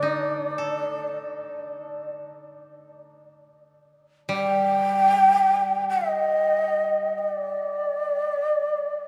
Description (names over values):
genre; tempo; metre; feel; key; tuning
japanese traditional, Japanese chamber music; free time; none; none; unclear; A4 = 440 Hz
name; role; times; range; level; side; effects
breathy mellow shakuhachi; melody; 0.0-9.1 s; D5 to G5; -24 LUFS; equal; none
koto; accompaniment; 0.0-7.5 s; D3 to A4; -34 LUFS; equal; none
room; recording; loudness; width
wet cathedral reverb, RT60 5.8 s; recorded in a church or concert hall; -23 LUFS; mono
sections
0.0-9.1 A section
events
none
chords
none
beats
free time